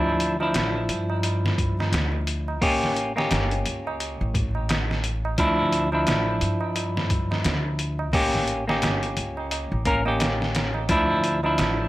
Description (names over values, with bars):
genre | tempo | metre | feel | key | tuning
trip hop | 87 BPM | 4/4 | swing 59% on 16ths | D harmonic minor | A4 = 440 Hz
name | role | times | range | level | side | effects
semi-hollow electric guitar | accompaniment | 0.0-11.9 s | F3 to Bb4 | -25 LUFS | equal | harmonic tremolo, vintage 12-bit sampler grit, tape echo
upright bass | bass | 0.0-11.9 s | G1 to G2 | -27 LUFS | equal | none
tabla | percussion | 0.1-11.9 s | none | -34 LUFS | right 3 dB | none
trip hop sampler-style drum kit | drums | 0.2-11.8 s | hi-hat, kick drum, snare drum | -27 LUFS | equal | overdrive
room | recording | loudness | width
light reverb, digital ambience | vinyl crackle | -21 LUFS | side -16 dB against mid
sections
0.0-11.9 A section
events
none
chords
0.0 Dmadd9; 2.6 A7b9; 5.4 Dmadd9; 8.1 A7b9; 10.9 Dmadd9